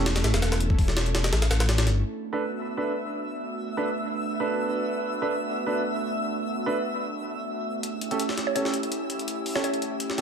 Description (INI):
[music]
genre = drum and bass, jungle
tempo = 166 BPM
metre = 4/4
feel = straight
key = B minor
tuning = A4 = 440 Hz
[part]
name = airy breathy pad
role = sustained chords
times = 0.0-10.2 s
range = A3 to A4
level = -32 LUFS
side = right 2 dB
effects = chorus
[part]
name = dark concert grand piano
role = stabs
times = 0.0, 2.3-10.2 s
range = C#4 to B4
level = -30 LUFS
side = right 3 dB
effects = dub echo
[part]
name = dark detuned saw bass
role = bass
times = 0.0-2.0 s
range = E1 to A1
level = -24 LUFS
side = left 1 dB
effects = none
[part]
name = jungle sampler-style drum kit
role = drums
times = 0.1-2.0, 7.8-10.2 s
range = hi-hat, kick drum, snare drum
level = -27 LUFS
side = left 1 dB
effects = small room reverb
[part]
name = twinkling granular texture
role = texture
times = 2.5-10.2 s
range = E5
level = -33 LUFS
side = left 2 dB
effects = built-in reverb
[part]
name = mallet-like synth pluck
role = melody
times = 8.5-9.7 s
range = C#5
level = -31 LUFS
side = equal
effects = chorus, phaser, dub echo
[sound]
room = moderate digital room reverb, RT60 1.1 s, digital ambience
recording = none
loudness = -24 LUFS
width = side -7 dB against mid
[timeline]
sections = 0.0-2.0 A section; 2.0-10.2 B section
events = drop 0.0-2.0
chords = 0.0 A7; 2.0 Bm7; 7.8 A7